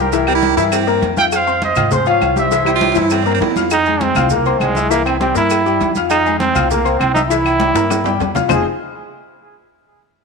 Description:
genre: latin, salsa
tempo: 200 BPM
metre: 4/4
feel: straight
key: F harmonic minor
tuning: A4 = 440 Hz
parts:
  - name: mellow trumpet section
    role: melody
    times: 0.0-3.2 s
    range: G4 to G5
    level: -18 LUFS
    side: right 3 dB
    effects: none
  - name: clear concert grand piano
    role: accompaniment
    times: 0.0-8.6 s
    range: E3 to F6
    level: -18 LUFS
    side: left 11 dB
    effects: none
  - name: upright bass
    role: bass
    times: 0.0-8.6 s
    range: F1 to Ab2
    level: -23 LUFS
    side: right 1 dB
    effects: none
  - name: agogo bells and timbales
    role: percussion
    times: 0.1-8.6 s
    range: none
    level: -24 LUFS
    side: right 14 dB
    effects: none
  - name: congas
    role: percussion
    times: 0.1-8.6 s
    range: none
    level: -25 LUFS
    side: right 2 dB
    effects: none
  - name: cowbell and bongos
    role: percussion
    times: 0.1-8.6 s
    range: none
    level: -27 LUFS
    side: left 13 dB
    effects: none
  - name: maracas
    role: percussion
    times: 0.1-8.6 s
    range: none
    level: -32 LUFS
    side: right 16 dB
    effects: none
  - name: edgy baritone saxophone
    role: second line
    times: 0.3-3.7 s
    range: C4 to F4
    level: -18 LUFS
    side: right 12 dB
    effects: none
  - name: claves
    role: percussion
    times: 0.3-8.6 s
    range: none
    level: -27 LUFS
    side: left 12 dB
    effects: none
  - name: bright trombone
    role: melody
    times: 3.7-8.6 s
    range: Ab3 to Ab4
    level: -17 LUFS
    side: right 4 dB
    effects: tape echo
room: moderate echo chamber reverb, RT60 1.7 s, studio ambience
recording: 1960s-style stereo with parts hard left and right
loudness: -13 LUFS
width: side -4 dB against mid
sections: 0.0-3.7 A section; 3.7-8.5 B section; 8.5-9.7 C section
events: drum fill 2.8-3.7, 7.6-8.5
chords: 0.1 C7; 1.3 Fm7; 2.5 C7; 3.7 Fm7; 4.9 C7; 6.1 Fm7; 7.3 C7; 8.5 Fm7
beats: | 0.12 0.42 0.72 1.02 | 1.32 1.62 1.92 2.21 | 2.51 2.81 3.11 3.41 | 3.71 4.01 4.31 4.61 | 4.91 5.21 5.51 5.80 | 6.11 6.40 6.70 7.00 | 7.30 7.60 7.90 8.20 | 8.50

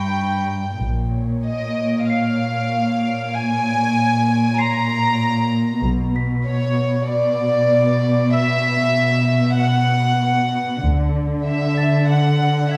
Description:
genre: cinematic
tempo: 96 BPM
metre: 4/4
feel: straight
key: unclear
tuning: A4 = 440 Hz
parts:
  - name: warm studio violin section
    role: melody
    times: 0.0-12.8 s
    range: C#5 to Bb5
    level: -23 LUFS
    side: equal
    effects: none
  - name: warm studio cello section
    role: bass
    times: 0.0-12.8 s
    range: G2 to D3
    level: -21 LUFS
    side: equal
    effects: none
  - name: celesta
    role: texture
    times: 0.0-12.8 s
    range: A5 to C7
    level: -32 LUFS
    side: equal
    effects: none
  - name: warm studio violin section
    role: texture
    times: 0.0-5.5 s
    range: Db5 to D7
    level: -36 LUFS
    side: equal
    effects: none
  - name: dark studio double bass section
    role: bass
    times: 0.8-1.4, 5.8-6.4, 10.8-11.4 s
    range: Bb1 to D2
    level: -25 LUFS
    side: equal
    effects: none
room: moderate scoring stage reverb, RT60 1.5 s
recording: none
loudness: -19 LUFS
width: mono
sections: 0.0-12.8 A section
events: none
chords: 0.0 Gm; 0.8 Bbm7; 5.8 Bm; 10.8 Dadd9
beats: 0.21 | 0.84 1.46 2.09 2.71 | 3.34 3.96 4.59 5.21 | 5.84 6.46 7.09 7.71 | 8.34 8.96 9.59 10.21 | 10.84 11.46 12.09 12.71

